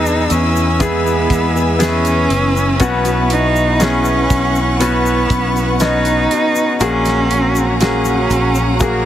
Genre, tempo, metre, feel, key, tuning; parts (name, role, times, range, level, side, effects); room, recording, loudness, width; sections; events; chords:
pop ballad; 60 BPM; 4/4; straight; B major; A4 = 437 Hz
warm cello; melody; 0.0-9.1 s; A#3 to D#4; -17 LUFS; right 2 dB; ping-pong delay
dark French horn section; second line; 0.0-9.1 s; B2 to G#4; -24 LUFS; right 5 dB
clear baby grand piano; accompaniment; 0.0-9.1 s; A#2 to D#5; -19 LUFS; left 3 dB
rich studio string section; sustained chords; 0.0-9.1 s; G#4 to E6; -23 LUFS; left 2 dB
picked steel-string acoustic guitar; arpeggios; 0.0-9.1 s; E3 to B4; -24 LUFS; left 4 dB
fingered electric bass; bass; 0.0-9.1 s; F#1 to E2; -19 LUFS; equal
tube shaker; percussion; 0.1-9.0 s; -30 LUFS; left 7 dB
damped 70s drum kit; drums; 0.3-9.0 s; hi-hat, kick drum, snare drum; -20 LUFS; right 1 dB
light reverb, small room ambience; heavily compressed radio sound; -12 LUFS; side -11 dB against mid
0.0-9.1 A section
0.0 E; 2.8 Bsus2; 6.8 F#add9/A#